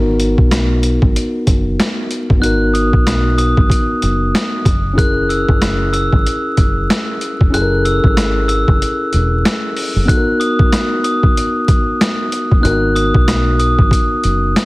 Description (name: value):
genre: hip hop, boom-bap hip-hop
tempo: 94 BPM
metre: 4/4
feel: swing 59% on 16ths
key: G# minor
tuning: A4 = 439 Hz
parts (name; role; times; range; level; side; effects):
- mellow tine electric piano; accompaniment; 0.0-14.7 s; B3 to A#4; -18 LUFS; left 1 dB; high-pass filter, low-pass filter
- deep dub fingered electric bass; bass; 0.0-14.5 s; E1 to B1; -17 LUFS; equal; none
- boom bap sampler-style drum kit; drums; 0.2-14.7 s; hi-hat, kick drum, rim click, snare drum; -14 LUFS; equal; overdrive
- glockenspiel with soft plastic mallets; melody; 2.4-14.7 s; D#6 to F#6; -19 LUFS; equal; high-pass filter, low-pass filter
room: little or no reverb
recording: heavily compressed radio sound, vinyl crackle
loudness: -12 LUFS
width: side -22 dB against mid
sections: 0.0-10.1 A section; 10.1-14.7 A section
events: break 0.0-2.4, 8.8-10.1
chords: 0.0 G#m7; 4.7 F#7; 10.1 G#m7